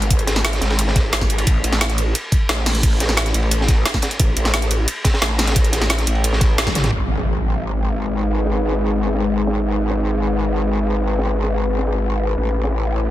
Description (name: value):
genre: dark technical drum and bass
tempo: 176 BPM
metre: 4/4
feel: straight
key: G# phrygian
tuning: A4 = 441 Hz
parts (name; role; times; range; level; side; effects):
- growl bass; bass; 0.0-13.1 s; G#1 to A1; -20 LUFS; equal; chorus, tube saturation, sidechain pumping
- drum and bass drum kit; drums; 0.0-6.9 s; hi-hat, snare drum, toms; -21 LUFS; equal; overdrive, small room reverb
- crunchy breakbeat drum kit; drums; 0.1-13.1 s; hi-hat, ride cymbal, snare drum; -26 LUFS; equal; high-pass filter on cymbals, low-pass filter on cymbals, small room reverb, high-pass filter on hats, low-pass filter on hats, high-pass filter on snare, low-pass filter on snare, high-pass filter on room, low-pass filter on room
- electronic kick drum; drums; 0.1-6.7 s; none; -18 LUFS; equal; overdrive, small room reverb
- sweeping resonant pad; sustained chords; 6.9-13.1 s; G#3 to C#5; -22 LUFS; left 2 dB; chorus, sidechain pumping
- impact; sound effects; 6.9-8.3 s; none; -24 LUFS; equal; none
room: light reverb, small room reverb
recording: dense, heavily limited modern master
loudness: -16 LUFS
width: side -14 dB against mid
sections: 0.0-6.9 A section; 6.9-13.1 B section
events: drop 0.0-6.9; band accent 6.6; drum fill 6.7; impact 6.9-8.3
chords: 0.0 N.C.; 6.9 G#m; 12.4 A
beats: | 0.11 0.45 0.79 1.13 | 1.47 1.81 2.15 2.49 | 2.83 3.17 3.52 3.86 | 4.20 4.54 4.88 5.22 | 5.56 5.90 6.24 6.58 | 6.92 7.26 7.61 7.95 | 8.29 8.63 8.97 9.31 | 9.65 9.99 10.33 10.67 | 11.02 11.36 11.70 12.04 | 12.38 12.72 13.06